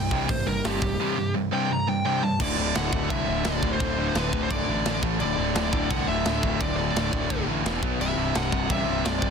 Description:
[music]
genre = punk rock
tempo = 171 BPM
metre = 4/4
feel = straight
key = unclear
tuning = A4 = 441 Hz
[part]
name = smooth overdriven lead guitar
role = melody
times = 0.0-9.3 s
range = G4 to Bb5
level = -30 LUFS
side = right 1 dB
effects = none
[part]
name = crunchy overdriven guitar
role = riff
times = 0.0-9.3 s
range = C2 to B3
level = -28 LUFS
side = left 11 dB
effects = none
[part]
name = tight distorted guitar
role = riff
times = 0.0-9.3 s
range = C2 to B3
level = -29 LUFS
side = right 15 dB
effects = distortion
[part]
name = fuzz picked electric bass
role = bass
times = 0.0-9.3 s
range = C1 to C2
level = -31 LUFS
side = equal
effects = overdrive
[part]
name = tight metal drum kit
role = drums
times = 0.1-9.3 s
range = crash cymbal, hi-hat, kick drum, snare drum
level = -29 LUFS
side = equal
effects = soft clipping on kick
[sound]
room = light reverb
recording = dense, heavily limited modern master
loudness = -23 LUFS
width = side -6 dB against mid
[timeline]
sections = 0.0-2.4 A section; 2.4-9.3 B section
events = lead electric guitar solo 0.0-2.4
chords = 0.0 C5; 2.4 D5; 5.0 A5; 5.2 D5; 7.7 E5; 7.8 B5; 8.0 C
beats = 0.29 0.64 | 0.99 1.35 1.70 2.05 | 2.40 2.75 3.10 3.45 | 3.80 4.15 4.50 4.85 | 5.20 5.55 5.90 6.25 | 6.60 6.95 7.30 7.65 | 8.00 8.35 8.70 9.05

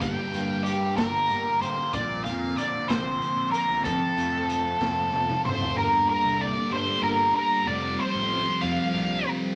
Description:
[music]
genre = psychedelic rock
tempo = 63 BPM (dotted quarters)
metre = 6/8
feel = straight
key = G minor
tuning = A4 = 439 Hz
[part]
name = octave-fuzz lead guitar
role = melody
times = 0.0-9.3 s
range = G4 to G5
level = -28 LUFS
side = equal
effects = wah, distortion
[part]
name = string machine, cellos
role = sustained chords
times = 0.0-9.6 s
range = D3 to D5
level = -35 LUFS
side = equal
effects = ensemble chorus
[part]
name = thick fuzz guitar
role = riff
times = 0.0-9.6 s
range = F2 to D4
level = -34 LUFS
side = equal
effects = distortion, phaser
[part]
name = fuzz picked electric bass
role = bass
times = 0.0-9.2 s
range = F1 to G2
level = -36 LUFS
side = equal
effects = overdrive
[part]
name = raw garage drum kit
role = drums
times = 0.0-5.8 s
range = hi-hat, kick drum, snare drum, toms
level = -35 LUFS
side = equal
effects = none
[sound]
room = moderate studio reverb, RT60 0.9 s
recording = none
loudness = -26 LUFS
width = mono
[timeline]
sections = 0.0-5.8 A section; 5.8-9.6 B section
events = drum fill 4.8-5.8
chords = 0.0 Gm; 1.9 Bbadd9; 3.8 F; 5.8 Gm; 7.7 Fsus2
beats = | 0.01 0.97 | 1.93 2.89 | 3.85 4.80 | 5.76 6.71 | 7.67 8.62

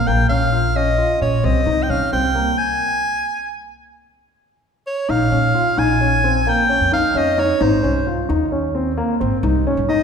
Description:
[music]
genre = contemporary instrumental, chamber music in an uneven meter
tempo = 263 BPM (eighths)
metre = 11/8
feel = straight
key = Bb dorian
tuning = A4 = 440 Hz
[part]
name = bright soprano saxophone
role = melody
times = 0.0-10.0 s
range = C5 to Ab5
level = -19 LUFS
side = equal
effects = none
[part]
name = warm grand piano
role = arpeggios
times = 0.1-10.0 s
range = Bb3 to F4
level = -20 LUFS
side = left 1 dB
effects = none
[part]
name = upright bass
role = bass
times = 0.1-9.9 s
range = Ab1 to C3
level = -20 LUFS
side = equal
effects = none
[sound]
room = wet concert hall reverb, RT60 1.8 s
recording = recorded in a church or concert hall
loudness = -15 LUFS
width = side -6 dB against mid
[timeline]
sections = 0.0-5.1 A section; 5.1-10.0 B section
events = stop 2.6-5.1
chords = 0.1 Bbm; 1.4 Cm; 2.6 N.C.; 5.1 Bbm; 7.6 Ab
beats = | 0.07 0.30 0.53 0.76 0.99 1.22 1.44 1.67 1.90 2.13 2.36 | 2.58 2.81 3.04 3.27 3.50 3.73 3.95 4.18 4.41 4.64 4.87 | 5.09 5.32 5.55 5.78 6.01 6.24 6.46 6.69 6.92 7.15 7.38 | 7.61 7.83 8.06 8.29 8.52 8.75 8.98 9.20 9.43 9.66 9.89

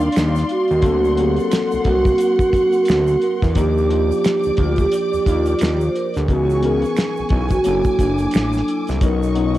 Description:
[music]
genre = R&B, neo-soul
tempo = 88 BPM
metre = 4/4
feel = swing 59% on 16ths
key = unclear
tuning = A4 = 442 Hz
[part]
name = vibraphone with medium mallets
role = melody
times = 0.0-9.6 s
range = D4 to C5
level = -18 LUFS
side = right 2 dB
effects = cassette tape
[part]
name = barky tine electric piano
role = accompaniment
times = 0.0-9.6 s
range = E3 to D5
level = -25 LUFS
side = left 8 dB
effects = wide subtle chorus, cassette tape
[part]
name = warm studio string section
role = sustained chords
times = 0.0-9.6 s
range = G3 to D6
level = -27 LUFS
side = equal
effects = cassette tape
[part]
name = fat analog bass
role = bass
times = 0.0-9.6 s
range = F#1 to E2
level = -20 LUFS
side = equal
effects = tube saturation
[part]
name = egg shaker and finger snaps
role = percussion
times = 0.0-9.4 s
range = none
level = -38 LUFS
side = right 11 dB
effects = none
[part]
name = cloth-damped thuddy drum kit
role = drums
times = 0.1-9.6 s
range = hi-hat, kick drum, snare drum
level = -20 LUFS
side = equal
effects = cassette tape
[sound]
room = light reverb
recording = home recording on cassette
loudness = -15 LUFS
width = side -14 dB against mid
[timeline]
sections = 0.0-9.6 A section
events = none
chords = 0.0 Ebmaj13; 0.8 D7b13; 3.6 Ebmaj7; 6.3 C#m7; 7.7 F#7alt; 9.0 Bmaj9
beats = 0.15 | 0.83 1.51 2.19 2.88 | 3.56 4.24 4.92 5.60 | 6.29 6.97 7.65 8.33 | 9.01

